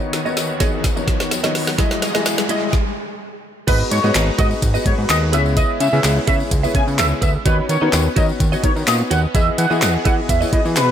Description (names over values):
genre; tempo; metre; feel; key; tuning
dance-pop; 127 BPM; 4/4; straight; G# minor; A4 = 444 Hz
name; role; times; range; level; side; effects
warm concert grand piano; accompaniment; 0.0-10.9 s; D#3 to D#5; -24 LUFS; left 5 dB; sidechain pumping, low-pass filter
filtered supersaw swell; sustained chords; 0.0-10.9 s; D#2 to A#5; -28 LUFS; right 1 dB; sidechain pumping, low-pass filter
direct-recorded clean electric guitar; riff; 0.0-10.9 s; E4 to E5; -26 LUFS; right 8 dB; analog chorus, low-pass filter
riser; sound effects; 0.0-2.7 s; none; -27 LUFS; equal; none
smooth R&B drum kit; drums; 0.1-10.9 s; crash cymbal, handclaps, hi-hat, kick drum, snare drum; -19 LUFS; equal; none
tambourine; percussion; 0.1-10.9 s; none; -31 LUFS; left 12 dB; none
octave-doubled lead; melody; 3.7-10.9 s; B4 to G#5; -22 LUFS; equal; chorus, phaser, tape echo
fat analog bass; bass; 3.7-10.9 s; G#1 to E3; -19 LUFS; equal; sidechain pumping
room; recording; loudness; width
little or no reverb; none; -15 LUFS; side -9 dB against mid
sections
0.0-3.7 A section; 3.7-10.9 B section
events
build-up 0.0-3.7; drum fill 0.0-2.7; riser 0.0-3.7; stop 2.7-3.7; drop 3.7-10.9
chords
0.0 Badd9/D#; 1.8 Emaj7; 3.7 G#m7; 5.3 C#m7; 7.5 Badd9/D#; 9.3 Emaj7